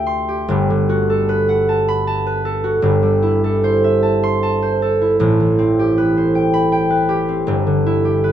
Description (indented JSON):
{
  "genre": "classical, solo harp piece",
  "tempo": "52 BPM (dotted quarters)",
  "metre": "6/8",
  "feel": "uneven beats, rubato",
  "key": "G major",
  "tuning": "A4 = 440 Hz",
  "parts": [
    { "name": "concert harp", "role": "solo", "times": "0.0-8.3 s", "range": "G1 to C6", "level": "-14 LUFS", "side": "equal", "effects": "none" }
  ],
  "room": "light reverb",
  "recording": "minimal, uncompressed stereo recording",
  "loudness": "-14 LUFS",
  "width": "side -10 dB against mid",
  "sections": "0.5-8.3 A section",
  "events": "none",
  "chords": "0.5 Gmaj9; 2.8 C6/G; 5.2 Am9; 7.5 G6"
}